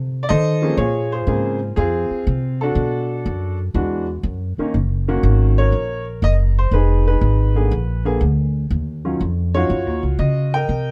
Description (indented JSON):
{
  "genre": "jazz piano trio",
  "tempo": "121 BPM",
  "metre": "4/4",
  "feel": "swing 68% on 8ths",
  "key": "Bb minor",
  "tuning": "A4 = 436 Hz",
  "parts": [
    { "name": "upright bass", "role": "bass", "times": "0.0-10.9 s", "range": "F1 to Eb3", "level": "-21 LUFS", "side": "equal", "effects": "none" },
    { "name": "clear baby grand piano", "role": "melody", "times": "0.2-10.9 s", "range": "Db3 to G5", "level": "-24 LUFS", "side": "equal", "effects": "plate reverb" }
  ],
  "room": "little or no reverb",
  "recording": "none",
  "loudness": "-19 LUFS",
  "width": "mono",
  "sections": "0.8-10.9 A section",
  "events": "none",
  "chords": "0.0 F7 (rootless); 0.8 Bbm9; 2.8 Bm7; 3.8 E9; 4.7 Gb6; 6.7 Fm7b5; 7.7 Bb(b9); 8.7 Ebm9",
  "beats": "0.28 | 0.78 1.27 1.77 2.27 | 2.76 3.26 3.75 4.25 | 4.75 5.24 5.74 6.24 | 6.73 7.23 7.72 8.22 | 8.71 9.21 9.70 10.20 | 10.69"
}